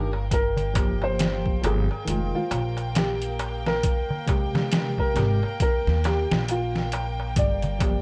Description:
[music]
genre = trip hop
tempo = 68 BPM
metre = 4/4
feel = swing 59% on 16ths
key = G phrygian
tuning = A4 = 444 Hz
[part]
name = tine electric piano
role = accompaniment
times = 0.0-8.0 s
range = C3 to G4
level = -32 LUFS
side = equal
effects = harmonic tremolo
[part]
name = warm studio violin section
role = sustained chords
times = 0.0-8.0 s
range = Bb3 to G5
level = -37 LUFS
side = equal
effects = none
[part]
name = upright bass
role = bass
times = 0.0-8.0 s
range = F1 to Eb2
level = -29 LUFS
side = equal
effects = none
[part]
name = darbuka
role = percussion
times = 0.1-8.0 s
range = none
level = -36 LUFS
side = equal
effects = none
[part]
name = felt-muted upright piano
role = melody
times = 0.3-8.0 s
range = F4 to D5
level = -31 LUFS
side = equal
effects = tape echo
[part]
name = trip hop sampler-style drum kit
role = drums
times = 0.3-8.0 s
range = hi-hat, kick drum, snare drum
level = -28 LUFS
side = equal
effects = overdrive
[sound]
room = small room ambience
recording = worn, warbling old tape, cassette tape, warbly pitch drift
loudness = -25 LUFS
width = mono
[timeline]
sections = 0.0-8.0 A section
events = none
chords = 0.3 Gm7; 2.1 Fm7; 3.8 Abmaj7; 5.6 Eb; 7.4 Gm7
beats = | 0.31 1.20 2.08 2.96 | 3.84 4.72 5.61 6.49 | 7.37

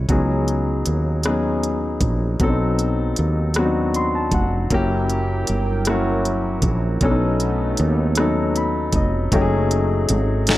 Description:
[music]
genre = slow six-eight R&B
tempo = 52 BPM (dotted quarters)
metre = 6/8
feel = straight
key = unclear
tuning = A4 = 437 Hz
[part]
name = dark grand piano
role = accompaniment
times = 0.0-10.6 s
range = F#3 to C6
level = -21 LUFS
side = left 2 dB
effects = none
[part]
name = warm analog pad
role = sustained chords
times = 0.0, 4.7-9.3 s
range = F#3 to G5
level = -28 LUFS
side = right 4 dB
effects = chorus
[part]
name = woody fretless electric bass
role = bass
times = 0.0-10.6 s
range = E#1 to D#2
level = -22 LUFS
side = equal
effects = none
[part]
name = smooth R&B drum kit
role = drums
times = 0.1-10.6 s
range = hi-hat, kick drum, rim click, snare drum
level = -22 LUFS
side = right 1 dB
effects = none
[sound]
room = light reverb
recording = none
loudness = -18 LUFS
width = side -15 dB against mid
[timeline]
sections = 0.1-9.3 A section; 9.3-10.6 B section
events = grand piano fill 3.5-4.7, 8.2-9.3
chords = 0.1 C#9sus4; 2.4 B7b9; 4.7 F#7b9; 7.0 B9; 9.3 F#m69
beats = | 0.09 1.24 | 2.40 3.55 | 4.70 5.86 | 7.01 8.17 | 9.32 10.47

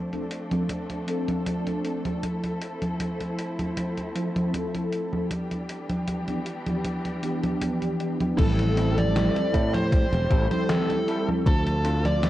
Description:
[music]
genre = vaporwave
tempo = 78 BPM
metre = 4/4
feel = straight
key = unclear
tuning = A4 = 441 Hz
[part]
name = warm studio string section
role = sustained chords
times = 0.0-12.3 s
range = D3 to A4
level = -34 LUFS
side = left 1 dB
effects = none
[part]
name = mellow synth brass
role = accompaniment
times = 0.1-11.4 s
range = E3 to A4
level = -29 LUFS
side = equal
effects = analog chorus, tape echo
[part]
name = gated 80s digital drum machine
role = drums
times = 0.1-12.3 s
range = congas, crash cymbal, hi-hat, snare drum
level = -29 LUFS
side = equal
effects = gated reverb, gated reverb snare
[part]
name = dark smooth lead guitar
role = melody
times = 8.4-12.3 s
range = A4 to D5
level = -28 LUFS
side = right 1 dB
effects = overdrive, tape echo
[part]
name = sustaining fretless electric bass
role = bass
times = 8.4-12.3 s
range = E1 to A2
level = -24 LUFS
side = equal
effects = none
[part]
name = electronic kick drum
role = drums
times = 8.4-11.6 s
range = none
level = -22 LUFS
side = equal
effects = none
[part]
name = semi-hollow electric guitar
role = riff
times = 8.8-12.1 s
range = C4 to A4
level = -35 LUFS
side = left 2 dB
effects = wide subtle chorus, tape echo
[sound]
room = light reverb, digital ambience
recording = worn, warbling old tape, cassette tape, warbly pitch drift, nothing above 10.4 kHz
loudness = -23 LUFS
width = side -14 dB against mid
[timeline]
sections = 0.0-8.4 A section; 8.4-12.3 B section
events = none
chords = 0.0 Dm7; 2.2 Fmaj7; 5.3 Em7; 8.4 Am7; 11.5 Dm7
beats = 0.69 1.46 | 2.23 3.00 3.77 4.54 | 5.31 6.08 6.85 7.62 | 8.38 9.15 9.92 10.69 | 11.46 12.23

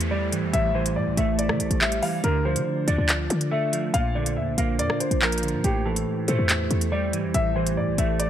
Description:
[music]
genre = hip hop, drill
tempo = 141 BPM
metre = 4/4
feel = half-time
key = A phrygian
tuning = A4 = 440 Hz
[part]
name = warm baby grand piano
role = melody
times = 0.0-8.3 s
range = G4 to F5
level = -28 LUFS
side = left 2 dB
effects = low-pass filter
[part]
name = clean electric guitar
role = accompaniment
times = 0.0-8.3 s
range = A2 to D4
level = -27 LUFS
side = right 4 dB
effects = ensemble chorus, low-pass filter
[part]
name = glass harmonica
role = sustained chords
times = 0.0-8.3 s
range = A3 to D5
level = -33 LUFS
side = left 3 dB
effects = none
[part]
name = short 808-style bass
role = bass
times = 0.0-8.3 s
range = A1 to E3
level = -26 LUFS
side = left 1 dB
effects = none
[part]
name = drill drum kit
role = drums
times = 0.0-8.3 s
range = handclaps, hi-hat, rim click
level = -26 LUFS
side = equal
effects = none
[part]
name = downlifter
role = sound effects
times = 0.0-2.2 s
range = none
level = -40 LUFS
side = left 1 dB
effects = none
[sound]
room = light reverb, digital ambience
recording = none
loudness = -21 LUFS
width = side -10 dB against mid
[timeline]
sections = 0.0-8.3 A section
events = none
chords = 0.0 Am7; 2.2 Dm; 3.9 Bbadd9; 5.6 Am7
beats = 0.11 | 0.54 0.96 1.39 1.81 | 2.24 2.66 3.09 3.52 | 3.94 4.37 4.79 5.22 | 5.64 6.07 6.49 6.92 | 7.34 7.77 8.20

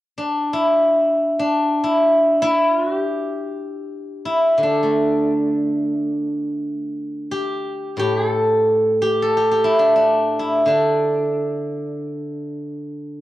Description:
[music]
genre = chinese traditional, Chinese solo plucked strings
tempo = free time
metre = none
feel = none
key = unclear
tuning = A4 = 440 Hz
[part]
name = steel-string zither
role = solo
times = 0.2-13.2 s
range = A2 to A4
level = -17 LUFS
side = equal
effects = none
[sound]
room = moderate spring reverb, RT60 1.6 s, studio reverb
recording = home recording on cassette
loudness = -16 LUFS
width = side -15 dB against mid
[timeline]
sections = 0.0-13.2 A section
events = none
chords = none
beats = free time

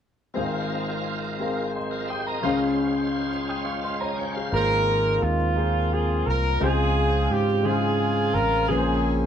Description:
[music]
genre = gospel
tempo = 58 BPM (dotted quarters)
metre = 6/8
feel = straight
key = Ab major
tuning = A4 = 440 Hz
[part]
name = clear grand piano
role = accompaniment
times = 0.3-9.3 s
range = Ab1 to Eb6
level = -26 LUFS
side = left 3 dB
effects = none
[part]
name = bright tonewheel organ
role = sustained chords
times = 0.3-4.7 s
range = Ab3 to Ab5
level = -30 LUFS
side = right 2 dB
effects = fast rotary speaker, overdrive, chorus vibrato
[part]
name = breathy alto saxophone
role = melody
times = 4.5-9.1 s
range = F4 to Bb4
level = -25 LUFS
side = right 2 dB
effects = none
[part]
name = clear horn section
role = melody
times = 4.5-9.3 s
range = Bb3 to Bb4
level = -27 LUFS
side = equal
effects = none
[part]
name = mellow French horn section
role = sustained chords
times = 4.5-9.3 s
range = Db3 to C5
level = -35 LUFS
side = equal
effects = none
[part]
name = fingered electric bass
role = bass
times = 4.5-9.3 s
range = Ab1 to Ab2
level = -25 LUFS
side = right 1 dB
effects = none
[sound]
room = moderate studio reverb, RT60 0.8 s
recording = band playing live in one room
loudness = -22 LUFS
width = side -8 dB against mid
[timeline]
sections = 0.4-4.5 A section; 4.5-9.3 B section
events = none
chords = 0.4 Ab69; 2.4 Dbmaj7; 4.5 Ab69; 6.6 Dbmaj7; 8.7 Bbm9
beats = | 0.36 1.40 | 2.44 3.49 | 4.53 5.57 | 6.61 7.65 | 8.69

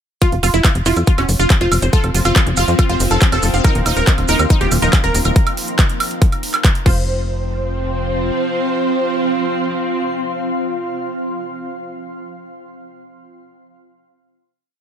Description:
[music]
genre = psychedelic trance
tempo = 140 BPM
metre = 4/4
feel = straight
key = unclear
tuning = A4 = 440 Hz
[part]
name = supersaw stab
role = melody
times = 0.2-10.6 s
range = Db4 to C5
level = -22 LUFS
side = right 1 dB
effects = phaser, sidechain pumping, dub echo
[part]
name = swarming drone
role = sustained chords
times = 1.4-10.6 s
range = F3 to C4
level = -25 LUFS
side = right 1 dB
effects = built-in reverb, phaser, sidechain pumping
[part]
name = wide unison pluck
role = riff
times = 0.2-7.3 s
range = Eb4 to F5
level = -24 LUFS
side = right 1 dB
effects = auto-pan, sidechain pumping, dub echo
[part]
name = big-room dance drum kit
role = drums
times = 0.2-6.9 s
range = crash cymbal, handclaps, hi-hat, woodblock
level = -21 LUFS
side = right 2 dB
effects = overdrive
[part]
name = electronic kick drum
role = drums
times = 0.2-6.9 s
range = none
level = -14 LUFS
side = equal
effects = overdrive
[part]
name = maracas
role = percussion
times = 0.2-5.3 s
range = none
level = -26 LUFS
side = right 5 dB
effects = none
[part]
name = granular cloud pad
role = texture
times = 1.7-11.0 s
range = Bb3 to C6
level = -24 LUFS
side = equal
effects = built-in reverb, sidechain pumping
[part]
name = tight sequencer bass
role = bass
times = 0.3-8.3 s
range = Eb1 to F2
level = -18 LUFS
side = equal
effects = none
[sound]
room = little or no reverb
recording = none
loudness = -14 LUFS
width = side -9 dB against mid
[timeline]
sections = 0.2-7.1 groove; 7.1-10.5 final chord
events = fade-in on ambient pad 0.2-5.4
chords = 0.2 F5; 3.6 Eb5; 6.9 F5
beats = | 0.22 0.65 1.07 1.50 | 1.93 2.36 2.79 3.22 | 3.65 4.07 4.50 4.93 | 5.36 5.79 6.22 6.64 | 7.07 7.50 7.93 8.36 | 8.79 9.22 9.64 10.07

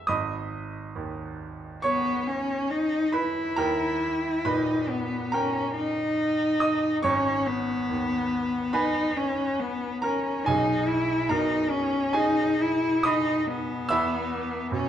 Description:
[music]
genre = classical, romantic duo for cello and grand piano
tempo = 70 BPM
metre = 4/4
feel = rubato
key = G# minor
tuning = A4 = 440 Hz
[part]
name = bright baby grand piano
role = accompaniment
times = 0.0-14.9 s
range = G#1 to E6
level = -28 LUFS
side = right 3 dB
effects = none
[part]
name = rich cello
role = melody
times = 1.8-14.9 s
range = B3 to E4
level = -25 LUFS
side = left 1 dB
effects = none
[sound]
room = wet recital hall reverb, RT60 1.6 s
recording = dark, warm production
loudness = -24 LUFS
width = side -10 dB against mid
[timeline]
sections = 0.1-14.9 A section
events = none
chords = 0.1 G#m; 3.6 D#; 7.0 G#m; 10.5 G#m/B; 13.9 E5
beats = | 0.07 0.95 1.83 2.70 | 3.57 4.45 5.32 6.18 | 7.04 7.90 8.74 9.60 | 10.46 11.29 12.14 13.05 | 13.90 14.73

